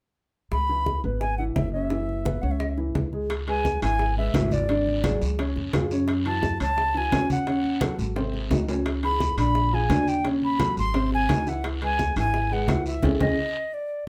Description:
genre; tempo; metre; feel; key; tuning
Afro-Cuban jazz; 173 BPM; 4/4; straight; C# minor; A4 = 441 Hz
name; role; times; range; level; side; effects
reedy concert flute; melody; 0.5-14.1 s; D5 to B#5; -29 LUFS; equal; none
upright bass; bass; 0.5-13.3 s; F#1 to F#2; -30 LUFS; equal; none
bongos; percussion; 0.5-13.3 s; none; -36 LUFS; equal; none
congas; percussion; 0.5-13.3 s; none; -32 LUFS; equal; none
warm upright piano; accompaniment; 0.7-13.3 s; B#2 to E5; -30 LUFS; equal; none
guiro; percussion; 3.3-13.3 s; none; -44 LUFS; equal; none
timbales; percussion; 3.3-13.3 s; none; -35 LUFS; equal; none
room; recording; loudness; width
wet small room reverb, RT60 0.5 s; heard from further back in the room; -25 LUFS; mono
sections
0.5-3.3 A section; 3.3-14.1 B section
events
drum fill 8.2-8.9, 13.0-14.1; band accent 13.0-14.1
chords
0.5 F#9sus4; 3.3 C#m7; 4.7 Dmaj7#11/G#; 5.4 C#; 6.1 F#m9; 7.5 D#m7b5; 8.2 G#7; 8.9 C#m7; 9.6 A#7; 10.3 D#m7b5; 10.9 G#7; 11.6 C#m7

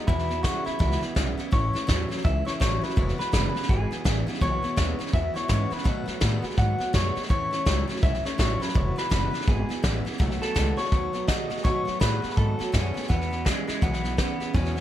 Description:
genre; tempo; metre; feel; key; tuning
rockabilly; 166 BPM; 4/4; swing 61% on 8ths; E major; A4 = 438 Hz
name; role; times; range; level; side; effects
electric guitar through a small old amp; melody; 0.0-14.8 s; G#3 to F#5; -30 LUFS; left 1 dB; spring reverb, analog delay
picked steel-string acoustic guitar; accompaniment; 0.0-14.8 s; E2 to F#4; -33 LUFS; left 3 dB; none
electric guitar through a small old amp; riff; 0.0-14.8 s; E2 to G#3; -34 LUFS; right 5 dB; lush chorus
upright bass; bass; 0.1-14.8 s; E1 to B2; -28 LUFS; equal; none
soft brush drum kit; drums; 0.1-14.8 s; hi-hat, kick drum, snare drum; -26 LUFS; equal; none
room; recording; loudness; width
light reverb; none; -23 LUFS; side -12 dB against mid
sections
0.0-1.5 A section; 1.5-13.1 B section; 13.1-14.8 A section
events
none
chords
0.1 E; 1.5 A; 3.0 E; 5.9 B7; 7.3 A; 8.8 E; 10.2 B7; 13.1 E

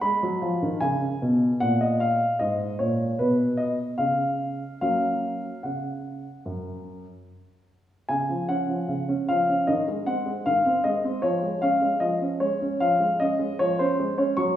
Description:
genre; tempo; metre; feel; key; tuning
classical-period piano sonatina; 75 BPM; 4/4; uneven beats; F# major, Db major from 8.1 s; A4 = 440 Hz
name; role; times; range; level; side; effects
warm grand piano; solo; 0.0-14.6 s; F#2 to Db6; -22 LUFS; equal; none
room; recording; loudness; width
wet recital hall reverb, RT60 1.5 s; heard from further back in the room, small room ambience; -22 LUFS; side -11 dB against mid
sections
0.0-8.1 A section; 8.1-14.6 B section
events
none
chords
0.0 G#m; 1.6 G#13sus4; 3.2 N.C.; 4.8 F#; 8.1 Db; 9.7 Ab/Eb; 11.2 Db/F

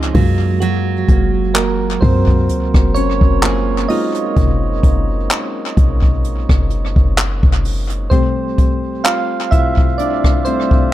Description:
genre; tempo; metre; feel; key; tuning
contemporary R&B; 64 BPM; 4/4; swing 54% on 16ths; unclear; A4 = 440 Hz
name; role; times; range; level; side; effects
soft electric-piano-like synth keys; accompaniment; 0.0-10.9 s; Gb3 to F5; -19 LUFS; right 1 dB; chorus, tremolo
nylon-string guitar; arpeggios; 0.0-5.0 s; Db3 to Ab4; -21 LUFS; right 9 dB; tape echo
clean 808-style bass; bass; 0.0-8.1 s; Gb1 to Gb2; -17 LUFS; equal; none
jazz brush drum kit; drums; 0.1-10.9 s; handclaps, hi-hat, kick drum, rim click; -15 LUFS; equal; tape echo
room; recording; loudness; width
small room reverb; echo-heavy mix; -13 LUFS; side -14 dB against mid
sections
0.0-10.9 A section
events
synth keys solo 0.0-10.9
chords
0.1 Gbmaj9; 8.1 Fmaj9

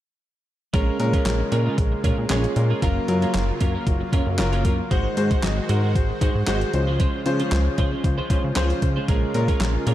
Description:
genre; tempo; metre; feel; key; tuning
dance-pop; 115 BPM; 4/4; straight; Bb minor; A4 = 440 Hz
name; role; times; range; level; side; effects
clear concert grand piano; accompaniment; 0.7-9.9 s; F3 to Eb5; -26 LUFS; left 2 dB; none
supersaw pad; sustained chords; 0.7-9.9 s; Db3 to C5; -31 LUFS; right 1 dB; sidechain pumping
twelve-string electric guitar; riff; 0.7-9.9 s; Ab3 to C5; -30 LUFS; right 4 dB; ensemble chorus
plucky analog bass; bass; 0.7-9.9 s; Gb1 to Db3; -23 LUFS; equal; sidechain pumping
crisp 8-bit digital drum machine; drums; 0.7-9.9 s; handclaps, hi-hat, kick drum, snare drum; -24 LUFS; equal; overdrive
room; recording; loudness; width
light reverb, digital ambience; dark, warm production; -19 LUFS; side -13 dB against mid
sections
0.7-9.9 A section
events
none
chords
0.7 Bbm7; 2.8 Gbmaj7; 4.9 Ab7; 6.7 Dbmaj7; 9.1 Bbm7

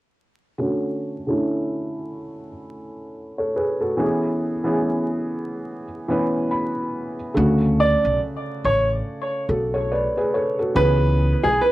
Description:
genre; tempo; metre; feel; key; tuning
hip hop; 71 BPM; 4/4; swing 60% on 16ths; unclear; A4 = 440 Hz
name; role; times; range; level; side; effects
felt-muted upright piano; accompaniment; 0.6-11.7 s; C#3 to B5; -23 LUFS; equal; low-pass filter, cassette tape
upright bass; bass; 7.4-11.6 s; A1 to D2; -20 LUFS; equal; none
bright upright piano; melody; 7.8-11.7 s; G#4 to D5; -20 LUFS; right 1 dB; low-pass filter, tape echo
room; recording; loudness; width
light reverb; home recording on cassette, vinyl crackle; -19 LUFS; side -16 dB against mid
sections
0.6-7.4 A section; 7.4-11.7 B section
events
filter sweep on felt piano 0.6-7.4; felt piano fill 6.1-7.4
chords
0.6 Dmaj7; 4.0 C#m7; 7.4 Dmaj7; 10.7 C#m7

